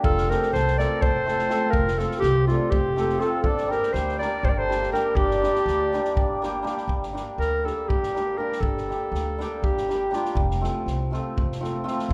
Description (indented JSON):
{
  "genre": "balkan folk, Balkan wedding band",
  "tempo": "243 BPM (eighths)",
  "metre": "7/8",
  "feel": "straight",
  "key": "G minor",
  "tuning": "A4 = 438 Hz",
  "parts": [
    { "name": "warm clarinet", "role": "melody", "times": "0.0-10.4 s", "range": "F4 to D5", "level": "-27 LUFS", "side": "equal", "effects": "none" },
    { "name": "mellow accordion", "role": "second line", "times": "0.0-6.4 s", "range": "C4 to Bb4", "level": "-32 LUFS", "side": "equal", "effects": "none" },
    { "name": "upright bass", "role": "bass", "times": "0.0-12.1 s", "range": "F1 to D2", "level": "-31 LUFS", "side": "equal", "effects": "none" },
    { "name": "unplugged drum kit", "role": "percussion", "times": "0.0-12.1 s", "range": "kick drum, snare drum", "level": "-30 LUFS", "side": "equal", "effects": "none" },
    { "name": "hammered dulcimer", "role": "accompaniment", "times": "0.3-12.1 s", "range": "F3 to A4", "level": "-31 LUFS", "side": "equal", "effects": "none" }
  ],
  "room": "moderate recital hall reverb, RT60 1.3 s",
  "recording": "recorded in a church or concert hall, lossy compression artefacts",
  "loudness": "-24 LUFS",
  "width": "mono",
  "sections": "0.0-6.9 A section; 6.9-12.1 B section",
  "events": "clarinet solo 6.9-12.1",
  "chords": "0.0 F; 3.4 Gm; 10.4 F"
}